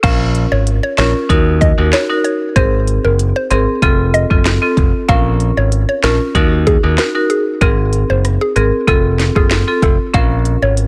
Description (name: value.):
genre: dancehall.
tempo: 95 BPM.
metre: 4/4.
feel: straight.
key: Bb minor.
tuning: A4 = 440 Hz.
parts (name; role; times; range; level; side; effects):
mallet-like synth pluck; melody; 0.0-10.7 s; Ab4 to F5; -21 LUFS; equal; chorus, phaser.
marimba with hard mallets; accompaniment; 0.0-10.9 s; C4 to Bb4; -20 LUFS; equal; sidechain pumping.
modern bright picked electric bass; bass; 0.0-10.9 s; F1 to Eb2; -17 LUFS; equal; none.
afro-pop drum kit; drums; 0.0-10.9 s; crash cymbal, finger snaps, hi-hat, kick drum, rim click, snare drum; -18 LUFS; equal; vintage 12-bit sampler grit.
room: digital ambience.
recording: none.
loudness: -14 LUFS.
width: mono.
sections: 0.0-10.9 A section.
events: none.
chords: 0.0 Bbm; 1.3 Ebm; 2.6 Abadd9; 3.8 F; 5.1 Bbm; 6.4 Ebm; 7.6 Abadd9; 8.9 F; 10.1 Bbm.